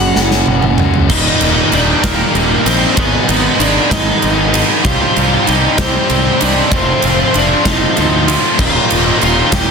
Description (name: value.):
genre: quiet-loud alternative rock.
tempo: 64 BPM (dotted quarters).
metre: 6/8.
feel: straight.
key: Eb major.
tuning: A4 = 440 Hz.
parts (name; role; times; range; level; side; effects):
high-gain lead guitar; melody; 0.0-9.7 s; Bb3 to G5; -17 LUFS; right 1 dB; distortion, slapback echo.
electric guitar at the edge of break-up; arpeggios; 0.0-1.1 s; Gb2 to Gb4; -19 LUFS; right 4 dB; harmonic tremolo.
tight distorted guitar; riff; 0.0-9.7 s; Eb2 to G4; -17 LUFS; left 12 dB; distortion.
fuzz fingered electric bass; bass; 0.0-9.7 s; Eb1 to D2; -18 LUFS; equal; overdrive.
huge arena drum kit; drums; 0.2-9.7 s; crash cymbal, kick drum, ride cymbal, snare drum, toms; -15 LUFS; right 1 dB; soft clipping on kick.
high-gain distorted guitar; riff; 1.1-9.7 s; Eb2 to G4; -18 LUFS; right 11 dB; distortion.
room: light reverb.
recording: dense, heavily limited modern master.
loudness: -10 LUFS.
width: side -5 dB against mid.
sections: 0.0-1.1 A section; 1.1-9.7 B section.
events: drum fill 0.2-1.1.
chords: 0.0 Gb; 1.1 Eb; 3.0 Abm; 4.8 Cm; 6.7 F; 8.6 Eb.